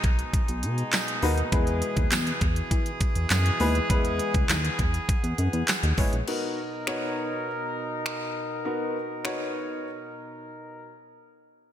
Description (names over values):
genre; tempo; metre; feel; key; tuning
dance-pop; 101 BPM; 4/4; straight; B major; A4 = 438 Hz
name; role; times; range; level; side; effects
clear brass ensemble; sustained chords; 0.0-11.0 s; B2 to A#4; -32 LUFS; equal; sidechain pumping
chorused synth bass; bass; 0.0-6.2 s; A1 to E3; -26 LUFS; equal; sidechain pumping
pop drum kit; drums; 0.0-9.4 s; crash cymbal, finger snaps, handclaps, hi-hat, kick drum, snare drum; -26 LUFS; equal; gated reverb
tambourine; percussion; 0.9-5.8 s; none; -37 LUFS; right 13 dB; none
warm concert grand piano; accompaniment; 1.2-9.8 s; G#3 to C#5; -31 LUFS; left 2 dB; sidechain pumping
room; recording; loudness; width
light reverb, small room ambience; bright 1980s-style digital production; -24 LUFS; side -10 dB against mid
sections
0.0-6.3 A section; 6.3-11.0 B section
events
drop 0.0-6.3; break 10.4-11.0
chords
0.0 B; 1.5 E; 6.3 Bmaj7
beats
0.34 0.93 | 1.52 2.12 2.71 3.31 | 3.90 4.49 5.09 5.68 | 6.28 6.87 7.46 8.06 | 8.65 9.25 9.84 10.43